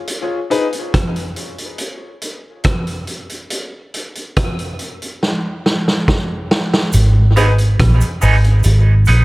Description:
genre	dub reggae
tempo	70 BPM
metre	4/4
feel	straight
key	G# minor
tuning	A4 = 440 Hz
part	vintage drum kit	drums	0.1-9.2 s	hi-hat, kick drum, rim click, snare drum	-18 LUFS	equal	none
part	clear concert grand piano	stabs	0.5-0.7, 7.4-9.2 s	D#4 to B4	-22 LUFS	left 3 dB	high-pass filter, tape echo
part	vintage muted fingered electric bass	bass	6.9-9.2 s	G#1 to A#1	-10 LUFS	equal	none
part	cabasa	percussion	6.9-9.2 s	none	-30 LUFS	right 8 dB	high-pass filter on perc
part	clean electric guitar	accompaniment	7.4-9.2 s	B3 to G#4	-20 LUFS	right 4 dB	tremolo, high-pass filter, tape echo
room	small room ambience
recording	echo-heavy mix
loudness	-13 LUFS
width	side -20 dB against mid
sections	0.0-6.9 A section; 6.9-9.2 B section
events	break 0.0-6.9; drum fill 5.2-6.9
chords	0.1 G#m; 3.5 N.C.; 6.9 G#m

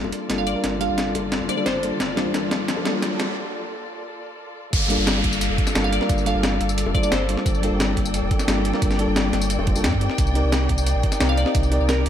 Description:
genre	liquid drum and bass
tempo	176 BPM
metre	4/4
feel	straight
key	G minor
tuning	A4 = 440 Hz
part	mellow FM electric piano	accompaniment	0.0-12.1 s	G3 to Eb5	-25 LUFS	left 2 dB	chorus, ping-pong delay
part	warm studio string section	sustained chords	0.0-12.1 s	Bb3 to G5	-30 LUFS	left 1 dB	none
part	sub bass with octave	bass	0.0-12.1 s	F1 to G2	-24 LUFS	right 1 dB	none
part	bongos	percussion	0.0-2.8, 6.9-7.1, 9.6-9.8 s	none	-33 LUFS	left 5 dB	none
part	riser and downlifter	sound effects	1.1-7.5 s	none	-30 LUFS	right 1 dB	none
part	breakbeat sampler-style drum kit	drums	0.1-12.1 s	crash cymbal, hi-hat, snare drum, tambourine	-25 LUFS	left 1 dB	none
part	glassy wavetable pluck	melody	0.4-1.9, 5.8-7.4, 11.3-12.1 s	Bb4 to F5	-28 LUFS	equal	chorus, ping-pong delay
part	electronic kick drum	drums	4.7-11.6 s	none	-23 LUFS	right 1 dB	overdrive
room	moderate recital hall reverb, RT60 1.5 s, digital ambience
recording	high-pass filter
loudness	-19 LUFS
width	side -10 dB against mid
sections	0.0-4.7 A section; 4.7-12.1 B section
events	build-up 0.0-4.7; drum fill 0.0-3.4; riser 1.1-3.4; break 3.4-4.7; drop 4.7-12.1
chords	0.0 Gm9; 10.2 Cm9

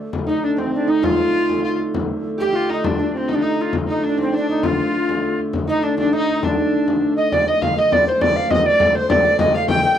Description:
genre	medieval dance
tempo	134 BPM (dotted quarters)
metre	6/8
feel	straight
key	D phrygian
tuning	A4 = 439 Hz
part	concert harp	second line	0.0-10.0 s	C4 to G5	-23 LUFS	right 3 dB	none
part	dark hurdy-gurdy	drone	0.0-10.0 s	D3 to A3	-27 LUFS	right 1 dB	none
part	frame drum	percussion	0.1-9.9 s	none	-24 LUFS	left 5 dB	none
part	mellow tenor recorder	melody	0.3-10.0 s	C4 to G5	-19 LUFS	right 1 dB	none
part	warm fiddle	second line	0.3-10.0 s	C4 to G5	-25 LUFS	left 3 dB	none
room	moderate studio reverb, RT60 0.5 s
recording	dry, close 1970s-style studio recording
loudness	-16 LUFS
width	side -9 dB against mid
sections	0.1-7.3 A section; 7.3-10.0 B section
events	none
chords	none

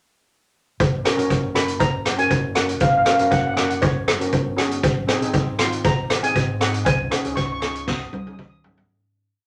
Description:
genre	calypso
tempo	118 BPM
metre	4/4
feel	straight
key	F# major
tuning	A4 = 440 Hz
part	overdriven fingered electric bass	bass	0.8-8.8 s	F#1 to G#2	-34 LUFS	equal	none
part	street-band drum kit	drums	0.8-8.9 s	hi-hat, kick drum, rim click, snare drum, toms	-24 LUFS	equal	none
part	cowbell	percussion	0.8-8.5 s	none	-30 LUFS	equal	none
part	steel pan	accompaniment	1.0-8.9 s	B#3 to A#4	-28 LUFS	equal	none
part	steel pan	melody	1.6-8.6 s	C#5 to D#6	-25 LUFS	equal	none
room	wet club reverb, RT60 0.7 s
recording	none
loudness	-21 LUFS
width	mono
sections	0.8-8.9 verse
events	fade-out 6.9-8.9; drum fill 7.9-8.9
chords	0.8 F#; 4.8 G#; 6.9 C#sus2

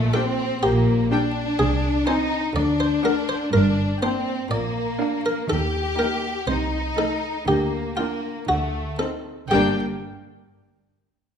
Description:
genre	cinematic, playful, whimsical film cue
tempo	122 BPM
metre	4/4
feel	straight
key	G minor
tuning	A4 = 440 Hz
part	buff-stop harpsichord	melody	0.0-9.8 s	F4 to D5	-26 LUFS	left 1 dB	none
part	clear chamber violin section	second line	0.0-9.8 s	A3 to G4	-25 LUFS	left 2 dB	none
part	rich chamber double bass section	bass	0.0-9.8 s	G1 to Eb2	-27 LUFS	right 1 dB	none
part	rich studio cello section	bass	0.0-9.8 s	G2 to Eb3	-25 LUFS	right 2 dB	none
part	rich chamber violin section	melody	0.1-9.8 s	F5 to A5	-31 LUFS	left 5 dB	none
part	clear studio viola section	accompaniment	0.1-9.8 s	G3 to Eb4	-28 LUFS	right 2 dB	none
room	wet recital hall reverb, RT60 1.4 s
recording	minimal, uncompressed stereo recording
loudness	-20 LUFS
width	side -7 dB against mid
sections	0.0-9.5 A section; 9.5-11.4 B section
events	none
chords	0.0 Gm; 1.6 Ab/C; 2.6 D; 3.5 Gm; 4.5 Bb; 5.5 Eb; 6.5 Adim/C; 7.5 Gm/D; 8.5 D7b9; 9.5 Gm

